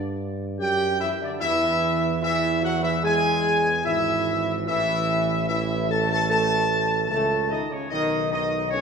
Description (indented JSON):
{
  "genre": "classical, ceremonial fanfare",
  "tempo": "74 BPM",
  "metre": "4/4",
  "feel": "straight",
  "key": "unclear",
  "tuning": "A4 = 440 Hz",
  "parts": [
    { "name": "warm trumpet section", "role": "melody", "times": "0.0-8.8 s", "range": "C#5 to A5", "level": "-24 LUFS", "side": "left 1 dB", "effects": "none" },
    { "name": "mellow French horn section", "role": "sustained chords", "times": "0.0-8.8 s", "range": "C#4 to A4", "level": "-27 LUFS", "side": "left 1 dB", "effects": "none" },
    { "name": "warm trombone section", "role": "sustained chords", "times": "0.0-8.8 s", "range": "C#3 to G4", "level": "-30 LUFS", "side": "right 2 dB", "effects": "none" },
    { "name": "warm tuba", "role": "bass", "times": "0.0-8.8 s", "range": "G#1 to G2", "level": "-28 LUFS", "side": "right 4 dB", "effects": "none" }
  ],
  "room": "wet scoring stage reverb, RT60 2.1 s",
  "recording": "minimal, uncompressed stereo recording",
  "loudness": "-21 LUFS",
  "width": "side -6 dB against mid",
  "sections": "0.0-8.8 A section",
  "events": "none",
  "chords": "0.0 G5; 1.4 E; 4.7 A; 7.9 Badd9",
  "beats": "0.60 | 1.41 2.23 3.04 3.85 | 4.67 5.49 6.30 7.11 | 7.91 8.71"
}